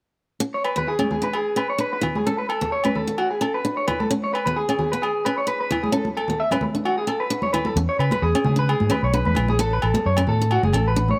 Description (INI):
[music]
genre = highlife guitar band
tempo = 131 BPM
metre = 4/4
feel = swing 55% on 16ths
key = E mixolydian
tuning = A4 = 442 Hz
[part]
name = picked steel-string acoustic guitar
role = accompaniment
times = 0.4-11.2 s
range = B3 to E4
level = -30 LUFS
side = equal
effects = none
[part]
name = electric guitar through a small old amp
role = arpeggios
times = 0.5-11.2 s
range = F#4 to E5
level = -26 LUFS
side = equal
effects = tape echo
[part]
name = agogo bells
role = percussion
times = 0.6-10.9 s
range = none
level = -33 LUFS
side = equal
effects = none
[part]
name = congas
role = percussion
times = 0.8-11.2 s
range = none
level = -30 LUFS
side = equal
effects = none
[part]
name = fingered electric bass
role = bass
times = 7.8-11.1 s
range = F#1 to C#3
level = -23 LUFS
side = equal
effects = none
[sound]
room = light reverb, small room ambience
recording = none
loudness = -22 LUFS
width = mono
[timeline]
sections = 0.4-7.8 A section; 7.8-11.2 B section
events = none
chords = 0.4 E (rootless); 2.3 A; 4.1 E (rootless); 5.9 Dsus2; 7.8 E; 9.6 A